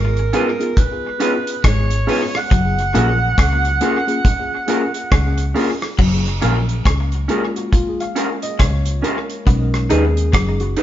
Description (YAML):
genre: lovers rock reggae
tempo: 69 BPM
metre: 4/4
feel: swing 62% on 16ths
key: F# major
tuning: A4 = 440 Hz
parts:
  - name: warm alto saxophone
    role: melody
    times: 0.0-5.6 s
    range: A#4 to F#5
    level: -22 LUFS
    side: right 3 dB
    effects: none
  - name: twangy electric guitar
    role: riff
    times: 0.0-10.6 s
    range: F#3 to D#4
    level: -26 LUFS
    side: left 4 dB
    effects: tape echo
  - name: vintage muted fingered electric bass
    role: bass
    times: 0.0-10.8 s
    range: F#1 to D#2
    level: -18 LUFS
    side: equal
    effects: none
  - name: damped 70s drum kit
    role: drums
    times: 0.2-10.8 s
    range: crash cymbal, hi-hat, kick drum, rim click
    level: -19 LUFS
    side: equal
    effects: none
  - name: tine electric piano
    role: accompaniment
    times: 0.3-10.8 s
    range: G#3 to E#5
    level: -24 LUFS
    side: left 2 dB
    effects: tape echo
  - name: electric guitar through a small old amp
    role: stabs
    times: 0.3-10.8 s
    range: C#4 to B4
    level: -21 LUFS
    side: right 1 dB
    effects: none
room: moderate stone room reverb, RT60 1.1 s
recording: band playing live in one room, nothing above 7.5 kHz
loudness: -15 LUFS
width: side -12 dB against mid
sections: 0.0-6.0 A section; 6.0-10.8 B section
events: tine electric piano solo 6.0-10.8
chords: 0.0 C#7; 2.5 F#maj7; 9.5 B6